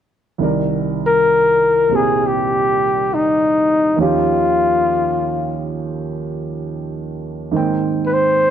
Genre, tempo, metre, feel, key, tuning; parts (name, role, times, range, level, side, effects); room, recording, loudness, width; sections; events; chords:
jazz; 68 BPM; 4/4; swing 66% on 8ths; C minor; A4 = 439 Hz
warm baby grand piano; accompaniment; 0.4-8.5 s; C2 to G5; -20 LUFS; right 4 dB
mellow flugelhorn; melody; 1.1-8.5 s; Eb4 to C5; -14 LUFS; left 2 dB
moderate echo chamber reverb, RT60 1.9 s; -14 LUFS; side -9 dB against mid
0.4-8.5 A section
0.4 Cm7; 4.0 Eb9; 7.5 Abmaj9